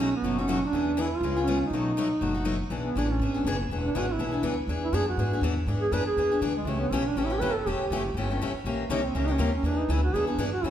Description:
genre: acoustic string swing (jazz manouche)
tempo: 242 BPM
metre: 4/4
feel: swing 54% on 8ths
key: E mixolydian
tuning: A4 = 437 Hz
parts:
  - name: dark duduk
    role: melody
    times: 0.0-10.7 s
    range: G#3 to B4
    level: -28 LUFS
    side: right 2 dB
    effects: none
  - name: picked steel-string acoustic guitar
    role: accompaniment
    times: 0.0-10.7 s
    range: B2 to A#4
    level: -29 LUFS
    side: left 3 dB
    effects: none
  - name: upright bass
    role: bass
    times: 0.0-10.7 s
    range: E1 to G#2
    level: -30 LUFS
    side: equal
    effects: none
room: wet recital hall reverb, RT60 1.3 s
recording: recorded in a church or concert hall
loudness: -24 LUFS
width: side -10 dB against mid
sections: 0.0-2.7 A section; 2.7-10.7 B section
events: duduk solo 2.7-10.7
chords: 0.0 B7; 0.7 E7; 1.2 C#7; 1.7 B7; 2.7 E7; 6.7 A7; 8.7 A#dim7; 9.6 E7

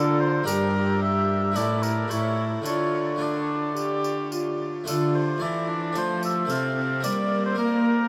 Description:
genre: classical, renaissance-style consort dance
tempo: 110 BPM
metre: 4/4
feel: straight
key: D minor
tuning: A4 = 442 Hz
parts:
  - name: warm oboe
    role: melody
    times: 0.0-8.1 s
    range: A4 to F5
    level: -30 LUFS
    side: equal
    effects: none
  - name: harpsichord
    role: accompaniment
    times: 0.0-8.1 s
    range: G2 to F5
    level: -34 LUFS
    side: equal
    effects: none
  - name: warm viola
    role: accompaniment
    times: 0.0-8.1 s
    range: A3 to G4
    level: -32 LUFS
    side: equal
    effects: none
  - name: dark cello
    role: bass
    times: 0.0-8.1 s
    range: G2 to Bb3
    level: -29 LUFS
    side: equal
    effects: none
  - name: tambourine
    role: percussion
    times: 0.5-7.3 s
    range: none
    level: -44 LUFS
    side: equal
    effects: none
room: wet huge ambient reverb, RT60 7.9 s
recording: in a vast, echoing space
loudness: -25 LUFS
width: mono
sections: 0.0-4.9 A section; 4.9-8.1 A section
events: none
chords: 0.5 Gm; 1.6 Asus4; 2.1 A; 2.7 Dm; 6.0 F; 7.0 Gm

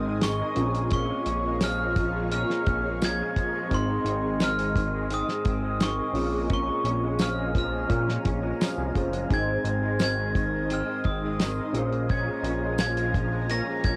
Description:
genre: indie pop, bedroom pop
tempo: 86 BPM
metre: 4/4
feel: straight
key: Bb minor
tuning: A4 = 440 Hz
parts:
  - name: glockenspiel with brass mallets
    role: melody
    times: 0.0-14.0 s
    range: C6 to Bb6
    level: -33 LUFS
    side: equal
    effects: lush chorus, cassette tape, analog delay
  - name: electric guitar through a small old amp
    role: accompaniment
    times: 0.0-14.0 s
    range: Ab2 to Db4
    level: -34 LUFS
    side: equal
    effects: ensemble chorus, vibrato effect, cassette tape
  - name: soft electric-piano-like synth keys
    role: accompaniment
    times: 0.0-14.0 s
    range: C4 to Eb5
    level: -36 LUFS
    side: equal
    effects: chorus, phaser, cassette tape
  - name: shimmering ambient pad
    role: sustained chords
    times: 0.0-14.0 s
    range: Ab4 to Eb6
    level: -42 LUFS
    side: equal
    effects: chorus, built-in reverb, cassette tape
  - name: fat analog bass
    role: bass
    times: 0.0-14.0 s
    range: F1 to Bb2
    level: -32 LUFS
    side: equal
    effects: none
  - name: damped 70s drum kit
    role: drums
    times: 0.2-14.0 s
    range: hi-hat, kick drum, snare drum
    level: -30 LUFS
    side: equal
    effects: cassette tape
  - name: tambourine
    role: percussion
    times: 0.2-12.9 s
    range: none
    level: -47 LUFS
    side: equal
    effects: none
room: light reverb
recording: home recording on cassette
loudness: -26 LUFS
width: mono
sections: 0.0-14.0 A section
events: none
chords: 0.0 Ab; 0.6 Bbm7; 3.7 Ab; 6.2 Bbm7; 9.3 Ab; 11.7 Bbm7

